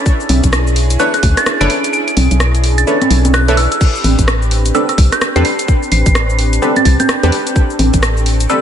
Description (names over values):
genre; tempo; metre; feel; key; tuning
UK garage, two-step garage; 128 BPM; 4/4; swing 62% on 16ths; unclear; A4 = 443 Hz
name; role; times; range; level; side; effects
glassy synth bell; melody; 0.0-8.6 s; E6 to D7; -19 LUFS; right 2 dB; chorus, tremolo, diffuse ambient delay
warm analog pad; sustained chords; 0.0-8.6 s; C4 to B4; -22 LUFS; equal; chorus, sidechain pumping
electronic kick drum; drums; 0.1-8.0 s; none; -12 LUFS; equal; none
garage drum kit; drums; 0.1-8.6 s; cabasa, congas, crash cymbal, hi-hat, rim click; -17 LUFS; equal; none
organ-like FM bass; bass; 0.3-8.5 s; F#1 to E2; -13 LUFS; equal; none
punchy chord stab; stabs; 1.0-8.6 s; C4 to C#5; -19 LUFS; equal; chorus, diffuse ambient delay
room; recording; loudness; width
light reverb, digital ambience; nothing above 10.9 kHz; -10 LUFS; side -9 dB against mid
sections
0.0-8.6 A section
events
kick drops out 1.9-3.8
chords
0.0 Bm11; 3.8 Am11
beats
| 0.06 0.53 1.00 1.47 | 1.93 2.40 2.87 3.34 | 3.81 4.28 4.75 5.21 | 5.68 6.15 6.62 7.09 | 7.56 8.03 8.50